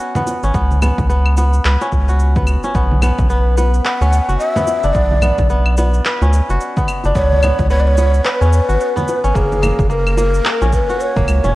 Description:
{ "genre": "organic downtempo", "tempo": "109 BPM", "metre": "4/4", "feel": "swing 59% on 16ths", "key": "B dorian", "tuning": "A4 = 440 Hz", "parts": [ { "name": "kora", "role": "arpeggios", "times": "0.0-11.6 s", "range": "A#3 to B4", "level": "-21 LUFS", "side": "equal", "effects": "low-pass filter, ping-pong delay" }, { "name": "electronic shaker, claves and handclaps", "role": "drums", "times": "0.2-11.5 s", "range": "none", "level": "-23 LUFS", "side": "equal", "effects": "studio reverb" }, { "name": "congas and bongos", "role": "percussion", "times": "0.2-11.5 s", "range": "none", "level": "-25 LUFS", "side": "right 1 dB", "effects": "none" }, { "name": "round analog bass", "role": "bass", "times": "0.4-11.5 s", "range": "E1 to E2", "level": "-14 LUFS", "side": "equal", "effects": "sidechain pumping" }, { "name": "electronic kick drum", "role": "drums", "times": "0.5-11.3 s", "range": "none", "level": "-20 LUFS", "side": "equal", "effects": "overdrive, studio reverb" }, { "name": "breathy mellow low ney", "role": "melody", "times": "3.3-11.5 s", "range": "G#4 to F#5", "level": "-19 LUFS", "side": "equal", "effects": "tape echo" } ], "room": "light reverb, studio ambience", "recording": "worn, warbling old tape, cassette tape, warbly pitch drift", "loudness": "-12 LUFS", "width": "side -17 dB against mid", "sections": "0.0-11.6 A section", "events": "none", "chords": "0.0 C#7(no3); 2.7 Bmadd9; 7.2 C#7(no3); 9.4 F#" }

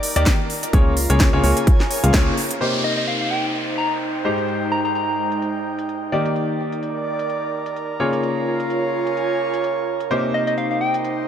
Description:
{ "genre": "piano house", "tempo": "128 BPM", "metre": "4/4", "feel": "swing 56% on 16ths", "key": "C minor", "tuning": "A4 = 439 Hz", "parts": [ { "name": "house drum kit", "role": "drums", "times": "0.0-11.2 s", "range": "hi-hat, snare drum", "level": "-24 LUFS", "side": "equal", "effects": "low-pass filter on hats, low-pass filter on snare" }, { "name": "airy breathy pad", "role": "texture", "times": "0.0-11.3 s", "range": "Ab3 to Ab5", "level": "-24 LUFS", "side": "right 3 dB", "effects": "chorus, sidechain pumping" }, { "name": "clear grand piano", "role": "riff", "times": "0.2-11.3 s", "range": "Ab2 to F5", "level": "-24 LUFS", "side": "left 2 dB", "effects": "sidechain pumping, digital delay" }, { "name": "plucky analog bass", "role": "bass", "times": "0.2-2.3 s", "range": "Db2 to Eb2", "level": "-19 LUFS", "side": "equal", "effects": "sidechain pumping" }, { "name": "electronic kick drum", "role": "drums", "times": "0.3-2.2 s", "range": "none", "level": "-17 LUFS", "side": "equal", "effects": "none" }, { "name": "downlifter", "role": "sound effects", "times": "2.6-6.4 s", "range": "none", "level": "-27 LUFS", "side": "equal", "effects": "none" }, { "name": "soft struck synth lead", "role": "melody", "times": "2.8-5.4, 10.3-11.0 s", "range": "Eb5 to Bb5", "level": "-24 LUFS", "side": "left 2 dB", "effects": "chorus, digital delay" } ], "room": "moderate lush hall reverb, RT60 1.9 s, digital ambience", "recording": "none", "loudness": "-18 LUFS", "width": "side -9 dB against mid", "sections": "0.0-2.6 A section; 2.6-11.3 B section", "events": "band accent 2.1", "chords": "0.5 Db6; 2.6 Cm7; 4.2 Abmaj7; 6.1 Ebmaj7; 8.0 Db6; 10.1 Cm7" }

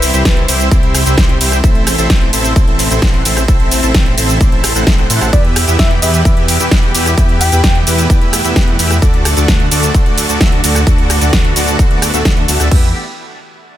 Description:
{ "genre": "EDM, festival progressive house", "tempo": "130 BPM", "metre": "4/4", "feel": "straight", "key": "E minor", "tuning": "A4 = 440 Hz", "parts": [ { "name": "soft struck synth lead", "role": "melody", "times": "0.0-0.4, 5.3-7.8 s", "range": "B4 to G5", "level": "-23 LUFS", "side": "left 2 dB", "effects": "chorus, dub echo" }, { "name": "muted studio string section", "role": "sustained chords", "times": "0.0-12.9 s", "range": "C3 to G4", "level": "-22 LUFS", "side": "left 1 dB", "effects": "sidechain pumping" }, { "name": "dense compressed supersaw", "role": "riff", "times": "0.0-12.9 s", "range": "A3 to A5", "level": "-17 LUFS", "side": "right 1 dB", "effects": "sidechain pumping, dub echo" }, { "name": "detuned saw bass", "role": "bass", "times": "0.0-12.9 s", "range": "A1 to A2", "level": "-16 LUFS", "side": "equal", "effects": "sidechain pumping" }, { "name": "big-room dance drum kit", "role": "drums", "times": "0.0-12.7 s", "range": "hi-hat, ride cymbal, rim click, shaker, snare drum", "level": "-16 LUFS", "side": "equal", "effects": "none" }, { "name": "big-room dance drum kit", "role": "drums", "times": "0.3-12.8 s", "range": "crash cymbal, kick drum", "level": "-11 LUFS", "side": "equal", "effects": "none" } ], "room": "little or no reverb", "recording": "none", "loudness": "-9 LUFS", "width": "side -12 dB against mid", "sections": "0.0-12.7 A section; 12.7-13.8 B section", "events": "drop 0.0-12.7", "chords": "0.0 C; 1.6 Am; 5.3 Em; 9.0 D; 12.7 Em" }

